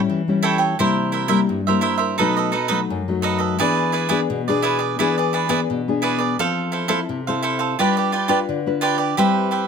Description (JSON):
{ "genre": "samba", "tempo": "86 BPM", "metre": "4/4", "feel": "straight", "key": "unclear", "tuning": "A4 = 440 Hz", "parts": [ { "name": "nylon-string guitar", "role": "accompaniment", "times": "0.0-9.7 s", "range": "F#2 to B4", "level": "-21 LUFS", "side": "left 5 dB", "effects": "none" }, { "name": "cavaquinho", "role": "accompaniment", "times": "0.4-9.7 s", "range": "D#4 to G5", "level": "-20 LUFS", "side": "right 6 dB", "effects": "none" } ], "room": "light reverb", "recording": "close, detailed microphones", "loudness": "-18 LUFS", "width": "side -6 dB against mid", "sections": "0.0-9.7 A section", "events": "none", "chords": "0.0 A7; 0.8 C7; 2.2 B7; 3.6 E7; 6.4 Fmaj7; 7.8 G7", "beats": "0.09 | 0.79 1.49 2.19 2.89 | 3.59 4.29 4.99 5.69 | 6.39 7.09 7.78 8.48 | 9.18" }